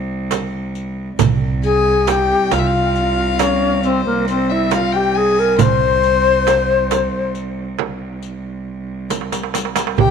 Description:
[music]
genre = Arabic maqam ensemble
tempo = 137 BPM (eighths)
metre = 10/8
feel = straight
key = C maqam hijaz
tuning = A4 = 440 Hz
[part]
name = rich cello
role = drone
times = 0.0-10.1 s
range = C2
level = -23 LUFS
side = right 2 dB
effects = none
[part]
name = darbuka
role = percussion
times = 0.3-10.1 s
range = none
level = -20 LUFS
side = right 9 dB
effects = none
[part]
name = frame drum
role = percussion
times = 0.3-10.1 s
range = none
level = -22 LUFS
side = right 13 dB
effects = none
[part]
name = riq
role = percussion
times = 0.3-10.0 s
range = none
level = -28 LUFS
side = left 9 dB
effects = none
[part]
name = upright bass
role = bass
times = 1.2-10.1 s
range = C2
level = -22 LUFS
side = right 2 dB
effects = none
[part]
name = reedy alto flute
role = melody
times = 1.6-10.1 s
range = Bb3 to C5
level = -16 LUFS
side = left 3 dB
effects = none
[part]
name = warm violin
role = second line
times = 1.6-10.1 s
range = C5 to C6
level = -22 LUFS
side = left 11 dB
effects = none
[sound]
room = moderate echo chamber reverb, RT60 2.0 s, small room ambience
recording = 1960s-style stereo with parts hard left and right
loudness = -14 LUFS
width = side -7 dB against mid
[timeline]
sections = 0.0-10.0 A section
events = drum fill 9.1-10.0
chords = none

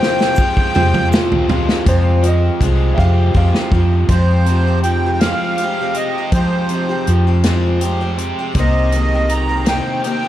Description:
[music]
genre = folk rock and heartland rock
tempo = 54 BPM (dotted quarters)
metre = 6/8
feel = straight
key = F minor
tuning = A4 = 441 Hz
[part]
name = accordion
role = melody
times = 0.0-10.3 s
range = C5 to Bb5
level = -20 LUFS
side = right 2 dB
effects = light tremolo tuning, slapback echo
[part]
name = dark grand piano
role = accompaniment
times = 0.0-1.5 s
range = F4 to C5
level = -28 LUFS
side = right 6 dB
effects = none
[part]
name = picked twelve-string acoustic guitar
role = accompaniment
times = 0.0-10.3 s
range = F2 to G4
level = -23 LUFS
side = left 4 dB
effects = none
[part]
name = overdriven electric guitar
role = riff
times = 0.0-10.3 s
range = F2 to G4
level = -21 LUFS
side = right 1 dB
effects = none
[part]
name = natural country drum kit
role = drums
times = 0.0-10.2 s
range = hi-hat, kick drum, snare drum, toms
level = -17 LUFS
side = equal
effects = none
[part]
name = egg shaker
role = percussion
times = 0.2-1.3 s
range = none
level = -37 LUFS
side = right 6 dB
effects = none
[part]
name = warm upright piano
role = second line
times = 1.9-3.9 s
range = C5 to F5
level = -25 LUFS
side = right 1 dB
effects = none
[part]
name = hollow-body short-scale fingered electric bass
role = bass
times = 1.9-9.8 s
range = C2 to F3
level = -15 LUFS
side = equal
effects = none
[sound]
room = light reverb, small room reverb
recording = dark, warm production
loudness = -13 LUFS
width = side -13 dB against mid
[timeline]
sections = 0.0-1.9 A section; 1.9-4.1 B section; 4.1-10.3 C section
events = drum fill 0.0-1.9, 3.0-4.1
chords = 0.0 Fmadd9; 8.6 Cm7

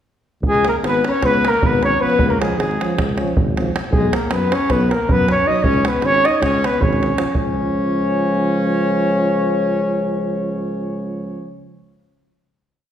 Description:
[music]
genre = balkan folk, Balkan brass band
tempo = 313 BPM (eighths)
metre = 9/8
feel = straight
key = Db mixolydian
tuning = A4 = 438 Hz
[part]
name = mellow tuba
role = bass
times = 0.4-11.6 s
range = Ab1 to Gb2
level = -22 LUFS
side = equal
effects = none
[part]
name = davul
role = percussion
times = 0.4-7.5 s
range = none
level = -21 LUFS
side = right 1 dB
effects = none
[part]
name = mellow flugelhorn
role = melody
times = 0.5-11.6 s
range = Ab4 to Eb5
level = -20 LUFS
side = right 1 dB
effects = none
[part]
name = warm alto saxophone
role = second line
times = 0.5-11.6 s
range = Ab3 to Eb4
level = -23 LUFS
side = left 3 dB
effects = none
[part]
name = clear euphonium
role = accompaniment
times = 2.0-11.6 s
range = Db4 to Eb4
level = -26 LUFS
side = left 7 dB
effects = none
[part]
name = mellow euphonium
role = accompaniment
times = 2.0-11.6 s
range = F3 to Gb3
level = -26 LUFS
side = right 4 dB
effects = none
[sound]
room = wet recital hall reverb, RT60 1.4 s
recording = recorded in a church or concert hall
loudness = -15 LUFS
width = side -10 dB against mid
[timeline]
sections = 0.4-7.3 A section; 7.3-10.8 final chord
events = none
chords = 0.4 Db; 3.9 Cb5; 5.6 Db5; 7.3 Db

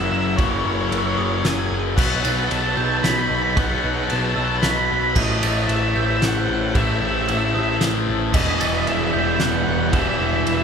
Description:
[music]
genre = post-rock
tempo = 113 BPM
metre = 3/4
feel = straight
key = E harmonic minor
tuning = A4 = 441 Hz
[part]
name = octave-fuzz lead guitar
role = melody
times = 0.0-10.6 s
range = C#5 to B5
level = -25 LUFS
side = right 2 dB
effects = distortion
[part]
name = warm chamber string section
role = sustained chords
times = 0.0-10.6 s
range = G3 to F#5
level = -31 LUFS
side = equal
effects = none
[part]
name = glockenspiel with hard plastic mallets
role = arpeggios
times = 0.0-10.6 s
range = D#6 to B6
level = -29 LUFS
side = right 7 dB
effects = none
[part]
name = tight distorted guitar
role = riff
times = 0.0-10.6 s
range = E2 to B3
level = -23 LUFS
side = left 7 dB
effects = distortion
[part]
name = growling picked electric bass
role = bass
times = 0.0-10.6 s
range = E1 to B1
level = -25 LUFS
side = right 1 dB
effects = overdrive
[part]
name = loose indie drum kit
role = drums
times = 0.4-10.6 s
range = crash cymbal, kick drum, ride cymbal, snare drum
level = -24 LUFS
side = right 1 dB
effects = none
[part]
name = distorted electric guitar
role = riff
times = 8.3-10.6 s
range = E3 to E4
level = -24 LUFS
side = right 6 dB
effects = distortion
[sound]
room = wet scoring stage reverb, RT60 2.0 s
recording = recorded in a church or concert hall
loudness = -18 LUFS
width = side -6 dB against mid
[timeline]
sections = 0.0-10.6 A section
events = none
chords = 0.0 F#7; 2.0 B; 5.2 Am7; 8.3 Em

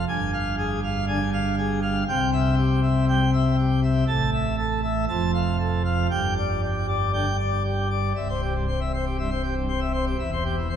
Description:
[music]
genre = classical, organ toccata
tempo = 119 BPM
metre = 4/4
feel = straight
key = C major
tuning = A4 = 440 Hz
[part]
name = pipe organ, plenum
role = solo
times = 0.0-10.8 s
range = C1 to A5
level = -21 LUFS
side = equal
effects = none
[sound]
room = wet church reverb, RT60 3.1 s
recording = minimal, uncompressed stereo recording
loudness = -21 LUFS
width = side -9 dB against mid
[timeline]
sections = 0.0-8.2 A section; 8.2-10.8 A section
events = none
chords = 0.1 G5; 2.1 C; 4.1 A5; 5.1 F; 6.1 G5; 8.2 C; 10.2 C/E

